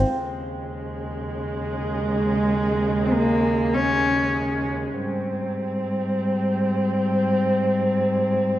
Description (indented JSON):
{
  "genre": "folktronica",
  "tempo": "free time",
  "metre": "none",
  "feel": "none",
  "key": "unclear",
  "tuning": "A4 = 440 Hz",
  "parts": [
    { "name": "dark string quartet", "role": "sustained chords", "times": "0.1-8.6 s", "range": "Eb2 to C4", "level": "-22 LUFS", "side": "equal", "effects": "none" },
    { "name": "warm cello", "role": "melody", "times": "1.9-4.6 s", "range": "Ab3 to Db4", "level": "-22 LUFS", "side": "equal", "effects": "tape echo" }
  ],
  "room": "wet lush hall reverb, RT60 2.4 s",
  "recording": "rough home demo mix",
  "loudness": "-21 LUFS",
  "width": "side -13 dB against mid",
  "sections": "0.1-8.6 A section",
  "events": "none",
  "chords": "0.1 Eb7sus4; 4.9 Abmaj7"
}